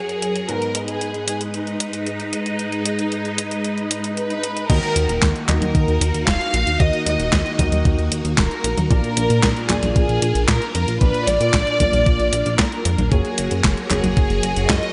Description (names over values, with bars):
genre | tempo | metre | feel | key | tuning
italo disco | 114 BPM | 4/4 | straight | Eb minor | A4 = 440 Hz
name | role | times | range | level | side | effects
dark studio violin section | melody | 0.0-14.9 s | Eb4 to F5 | -26 LUFS | equal | digital delay
phased string machine | sustained chords | 0.0-14.9 s | Gb2 to Eb5 | -29 LUFS | equal | ensemble chorus, phaser
dark baby grand piano | stabs | 0.0-14.4 s | Ab2 to Eb5 | -30 LUFS | equal | none
clean 12-bit digital drum machine | drums | 0.1-14.9 s | congas, crash cymbal, handclaps, hi-hat, snare drum | -25 LUFS | equal | overdrive, gated reverb
swell | sound effects | 3.9-4.7 s | none | -34 LUFS | equal | none
chorused synth bass | bass | 4.7-14.8 s | Eb1 to Bb2 | -24 LUFS | equal | tube saturation
electronic kick drum | drums | 4.7-14.8 s | none | -21 LUFS | equal | overdrive
room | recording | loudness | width
light reverb | nothing above 10.4 kHz | -19 LUFS | mono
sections
0.0-4.7 A section; 4.7-14.9 B section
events
filter sweep on grand piano 0.0-4.7; swell 3.9-4.7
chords
0.5 Abm; 4.7 Ebm; 8.9 Bb; 13.1 Gbadd9